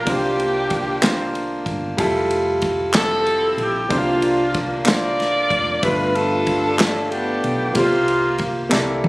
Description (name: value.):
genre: slow gospel.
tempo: 62 BPM (dotted quarters).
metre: 6/8.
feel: straight.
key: unclear.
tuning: A4 = 440 Hz.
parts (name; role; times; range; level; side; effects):
bright saxophone section; melody; 0.0-8.7 s; Bb3 to D5; -20 LUFS; equal; none.
clear grand piano; accompaniment; 0.0-9.1 s; G2 to E5; -21 LUFS; equal; none.
hollow-body short-scale fingered electric bass; bass; 0.0-9.1 s; F1 to C2; -30 LUFS; equal; none.
natural country drum kit; drums; 0.1-9.1 s; kick drum, ride cymbal, snare drum, toms; -24 LUFS; equal; none.
group handclap; percussion; 1.0-9.0 s; none; -24 LUFS; equal; none.
room: light reverb.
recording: recorded on a phone in the room, studio reverb, compression.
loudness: -17 LUFS.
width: side -22 dB against mid.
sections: 0.0-9.1 A section.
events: drum fill 8.7-9.1.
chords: 0.1 C9sus4; 2.0 Fmaj9; 3.9 C9sus4; 5.8 G13; 7.8 C7sus4.